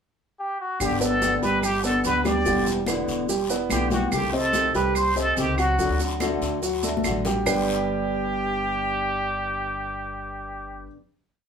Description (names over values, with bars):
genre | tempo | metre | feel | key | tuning
latin, Cuban son and guajira | 144 BPM | 4/4 | straight | G major | A4 = 441 Hz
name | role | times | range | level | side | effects
trumpet with plunger mute | melody | 0.4-10.9 s | F#4 to D5 | -25 LUFS | right 1 dB | none
nylon-string guitar | accompaniment | 0.8-11.0 s | G2 to G4 | -29 LUFS | left 4 dB | none
upright bass | bass | 0.8-10.9 s | E1 to D2 | -32 LUFS | left 1 dB | none
claves | percussion | 0.8-7.6 s | none | -33 LUFS | right 8 dB | none
congas | percussion | 0.8-7.6 s | none | -33 LUFS | left 3 dB | none
guiro | percussion | 0.8-7.6 s | none | -36 LUFS | left 4 dB | none
maracas | percussion | 0.8-7.6 s | none | -35 LUFS | right 4 dB | none
warm concert grand piano | arpeggios | 1.0-10.9 s | F#3 to G5 | -26 LUFS | right 2 dB | none
room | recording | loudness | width
wet studio ambience, RT60 0.5 s | band playing live in one room | -21 LUFS | side -7 dB against mid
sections
0.0-0.8 pickup bar; 0.8-7.5 A section; 7.5-10.8 final chord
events
drum fill 6.8-7.5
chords
0.0 N.C.; 0.8 G; 2.5 Em7; 4.1 Cm6; 5.8 D; 7.5 G